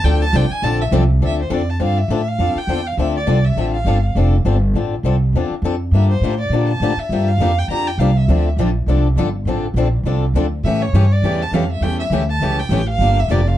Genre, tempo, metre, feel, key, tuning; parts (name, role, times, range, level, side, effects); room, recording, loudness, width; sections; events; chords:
acoustic string swing (jazz manouche); 204 BPM; 4/4; swing 57% on 8ths; D minor; A4 = 440 Hz
warm violin; melody; 0.0-8.5, 10.6-13.6 s; C5 to Bb5; -23 LUFS; right 2 dB
picked steel-string acoustic guitar; accompaniment; 0.0-1.0, 8.3-13.4 s; D3 to A4; -24 LUFS; right 3 dB
picked swing-style acoustic guitar; accompaniment; 0.0-13.4 s; C#3 to A4; -22 LUFS; left 5 dB
upright bass; bass; 0.0-13.6 s; F1 to Bb2; -16 LUFS; equal
light reverb; dark, warm production; -15 LUFS; side -13 dB against mid
0.0-1.2 A section; 1.2-13.6 B section
violin solo 0.0-1.2
0.0 Dm7; 5.9 Gm9; 8.3 Dm7; 10.6 A7; 13.0 Gm7